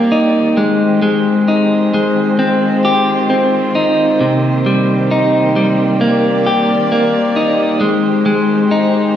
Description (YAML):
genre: post-rock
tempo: 66 BPM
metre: 4/4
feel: straight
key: unclear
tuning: A4 = 440 Hz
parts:
  - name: rich studio string section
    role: sustained chords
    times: 0.0-9.2 s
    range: Eb3 to D5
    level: -18 LUFS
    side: right 3 dB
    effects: none
  - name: clean electric guitar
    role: arpeggios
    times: 0.0-9.2 s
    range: C3 to G4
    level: -12 LUFS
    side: left 1 dB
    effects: slapback echo
room: wet recital hall reverb, RT60 1.3 s, small room ambience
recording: big arena sound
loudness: -11 LUFS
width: side -10 dB against mid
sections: 0.0-9.2 A section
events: none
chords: 0.0 Cm7; 0.6 Abmaj7; 4.2 Cm7; 7.8 Abmaj7